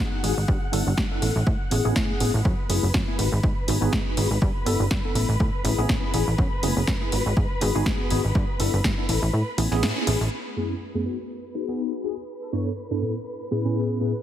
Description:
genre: filtered disco house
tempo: 122 BPM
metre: 4/4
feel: swing 56% on 16ths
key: unclear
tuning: A4 = 441 Hz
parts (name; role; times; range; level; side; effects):
- tine electric piano; accompaniment; 0.0-14.1 s; F#2 to B4; -27 LUFS; left 1 dB; medium stereo tremolo, phaser, sidechain pumping, low-pass filter
- dark symphonic violin section; sustained chords; 0.0-14.2 s; B4 to F#6; -35 LUFS; equal; vintage 12-bit sampler grit, sidechain pumping, low-pass filter
- plucky analog bass; bass; 0.0-10.3 s; F#1 to A2; -24 LUFS; equal; sidechain pumping, low-pass filter
- house drum kit; drums; 0.2-10.2 s; hi-hat, snare drum; -30 LUFS; equal; sidechain pumping on cymbals, low-pass filter on cymbals, studio reverb, sidechain pumping on hats, low-pass filter on hats, low-pass filter on snare
- electronic kick drum; drums; 0.5-9.0 s; none; -26 LUFS; equal; studio reverb
- muted trumpet section; melody; 12.0-14.2 s; G#4 to C#5; -40 LUFS; left 1 dB; sidechain pumping, low-pass filter
room: light reverb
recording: heavily compressed radio sound, multiband compression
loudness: -22 LUFS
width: side -11 dB against mid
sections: 0.0-10.3 A section; 10.3-14.2 B section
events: kick drops out 9.3-10.3; band accent 9.8; filter sweep 10.3-14.2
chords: 0.5 G69; 1.2 Amaj7; 2.5 F#m11; 3.2 G#m7; 4.4 G69; 5.2 Amaj7; 6.4 F#m11; 7.1 G#m7; 8.4 G69; 9.1 Amaj7; 10.3 F#m11; 11.1 G#m7; 12.3 G69; 13.0 Amaj7

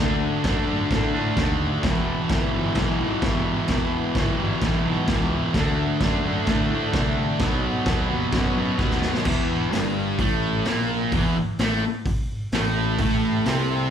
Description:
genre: garage rock duo or trio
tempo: 129 BPM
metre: 4/4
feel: straight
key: E minor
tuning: A4 = 440 Hz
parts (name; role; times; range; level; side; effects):
- combo organ; sustained chords; 0.0-9.2, 13.0-13.9 s; A4 to A5; -37 LUFS; left 1 dB; none
- fuzz guitar; riff; 0.0-13.9 s; E2 to D4; -23 LUFS; equal; distortion, slapback echo
- fuzz picked electric bass; bass; 0.0-13.9 s; E1 to A2; -28 LUFS; equal; overdrive
- raw garage drum kit; drums; 0.4-13.6 s; crash cymbal, hi-hat, kick drum, snare drum; -26 LUFS; equal; none
room: studio reverb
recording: live gig heard through the venue's PA, club reverb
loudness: -20 LUFS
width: side -8 dB against mid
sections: 0.0-9.3 A section; 9.3-13.9 B section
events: drum fill 8.8-9.3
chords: 0.0 D; 1.8 Em; 5.5 D; 7.4 B; 9.3 Em; 13.0 A5

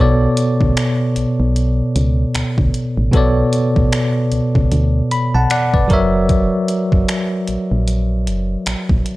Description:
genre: contemporary R&B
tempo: 76 BPM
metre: 4/4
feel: swing 58% on 16ths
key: B minor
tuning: A4 = 439 Hz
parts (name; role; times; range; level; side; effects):
- bell-like tine electric piano; accompaniment; 0.0-9.2 s; B2 to B5; -16 LUFS; equal; medium stereo tremolo
- solid FM bass; bass; 0.0-9.0 s; F#1 to D2; -18 LUFS; equal; none
- detuned 8-bit digital drum machine; drums; 0.4-9.2 s; finger snaps, hi-hat, kick drum; -19 LUFS; equal; overdrive, vintage 12-bit sampler grit
room: little or no reverb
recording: dry, gritty hardware recording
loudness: -14 LUFS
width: side -18 dB against mid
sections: 0.0-9.2 A section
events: none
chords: 0.0 Bm7; 5.9 F#7

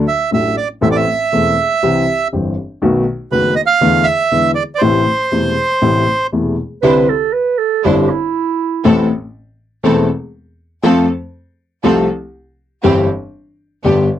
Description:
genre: tango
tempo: 120 BPM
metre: 4/4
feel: rubato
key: A minor, C major from 6.8 s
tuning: A4 = 440 Hz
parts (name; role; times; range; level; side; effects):
- warm upright piano; accompaniment; 0.0-14.1 s; E1 to A4; -14 LUFS; left 2 dB; none
- bandoneon; melody; 0.1-6.3 s; B4 to F5; -14 LUFS; right 4 dB; none
- mellow clarinet; second line; 6.8-9.1 s; E4 to B4; -15 LUFS; right 7 dB; none
- clear studio string section; stabs; 6.8-14.1 s; G3 to C5; -20 LUFS; right 4 dB; none
room: light reverb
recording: dry, close 1970s-style studio recording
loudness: -12 LUFS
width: side -11 dB against mid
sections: 0.0-6.8 A section; 6.8-14.2 B section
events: none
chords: 0.0 D; 0.8 Am; 1.8 C; 2.8 B7; 3.8 E7sus4; 4.3 E7; 4.8 Am; 6.8 Cadd9; 8.8 Am; 10.8 F; 12.8 C/G

